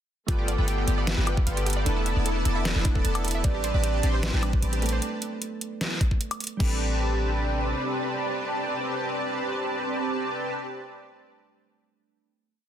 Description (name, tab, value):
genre	future bass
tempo	152 BPM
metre	4/4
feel	half-time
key	A minor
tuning	A4 = 440 Hz
part	glassy digital keys	accompaniment	0.3-12.3 s	G3 to B4	-37 LUFS	right 3 dB	chorus, phaser, sidechain pumping, digital delay
part	warm studio string section	sustained chords	0.3-10.5 s	C3 to B4	-38 LUFS	left 2 dB	sidechain pumping
part	wide unison pluck	arpeggios	0.3-6.8 s	G4 to A5	-37 LUFS	right 4 dB	sidechain pumping, digital delay
part	soft supersaw	riff	0.3-10.5 s	B3 to C6	-29 LUFS	equal	ensemble chorus, cassette tape, sidechain pumping, digital delay
part	warm 808-style bass	bass	0.3-7.7 s	E1 to A1	-26 LUFS	equal	sidechain pumping
part	dubstep drum kit	drums	0.3-6.7 s	crash cymbal, hi-hat, snare drum, woodblock	-31 LUFS	equal	none
part	electronic kick drum	drums	0.3-6.7 s	none	-24 LUFS	equal	none
part	kalimba	melody	3.4-11.2 s	A3 to D5	-36 LUFS	right 6 dB	sidechain pumping, digital delay
room	light reverb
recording	dense, heavily limited modern master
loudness	-24 LUFS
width	side -10 dB against mid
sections	0.3-6.6 drop; 6.6-9.8 final chord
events	drop 0.3-6.6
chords	0.3 G9; 1.9 E7sus4; 3.4 Am11; 5.0 N.C.; 6.6 Am11